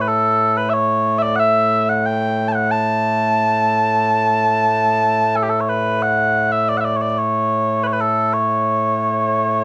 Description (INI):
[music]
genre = scottish traditional, Scottish pipe music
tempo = 91 BPM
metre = 4/4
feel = straight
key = A mixolydian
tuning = A4 = 441 Hz
[part]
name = mellow small bagpipes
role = solo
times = 0.0-9.6 s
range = A2 to A5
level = -18 LUFS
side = equal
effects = none
[sound]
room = moderate small room reverb, RT60 0.5 s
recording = none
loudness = -18 LUFS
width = mono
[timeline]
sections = 0.0-5.4 A section; 5.4-9.6 A section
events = none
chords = none